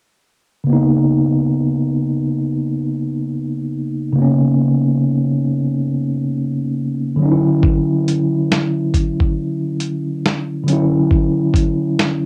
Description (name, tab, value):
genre	lo-fi hip hop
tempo	69 BPM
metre	4/4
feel	swing 61% on 16ths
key	unclear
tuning	A4 = 440 Hz
part	mellow tine electric piano	accompaniment	0.6-12.3 s	C#3 to E4	-18 LUFS	equal	cassette tape, low-pass filter
part	dusty soul sampler-style drum kit	drums	7.6-12.2 s	hi-hat, kick drum, snare drum	-19 LUFS	equal	cassette tape
room	moderate studio ambience, RT60 0.5 s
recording	home recording on cassette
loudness	-17 LUFS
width	mono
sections	0.7-12.3 A section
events	none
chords	0.7 Bmaj9; 7.2 Dmaj9